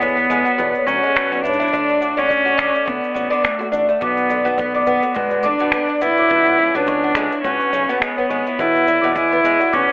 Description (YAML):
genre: folktronica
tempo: 105 BPM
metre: 4/4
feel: swing 56% on 16ths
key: unclear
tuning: A4 = 442 Hz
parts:
  - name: dark cello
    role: melody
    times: 0.0-9.9 s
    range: G#3 to E4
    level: -17 LUFS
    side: equal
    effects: none
  - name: kalimba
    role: second line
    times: 0.0-9.9 s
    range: C#5 to D6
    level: -23 LUFS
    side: equal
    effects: tape echo
  - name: picked twelve-string acoustic guitar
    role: arpeggios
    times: 0.0-9.9 s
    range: B2 to F#4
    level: -21 LUFS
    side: equal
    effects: digital delay
  - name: round analog bass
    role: bass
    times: 0.0-9.9 s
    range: F#1 to G#2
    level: -32 LUFS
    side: equal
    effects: tube saturation
  - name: kick drum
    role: drums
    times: 0.0-9.9 s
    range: none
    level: -32 LUFS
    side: equal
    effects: none
  - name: organic electronic drum kit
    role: drums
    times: 0.0-9.9 s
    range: finger snaps, hi-hat, shaker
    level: -22 LUFS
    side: equal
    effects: none
room: moderate small room reverb, RT60 0.6 s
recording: telephone sound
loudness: -15 LUFS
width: side -25 dB against mid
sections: 0.0-9.9 A section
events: none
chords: 0.0 Eadd9; 1.7 D; 4.0 Bm; 6.3 C#m7; 8.6 Eadd9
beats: 0.02 0.59 1.16 | 1.73 2.30 2.87 3.44 | 4.02 4.59 5.16 5.73 | 6.30 6.87 7.45 8.02 | 8.59 9.16 9.73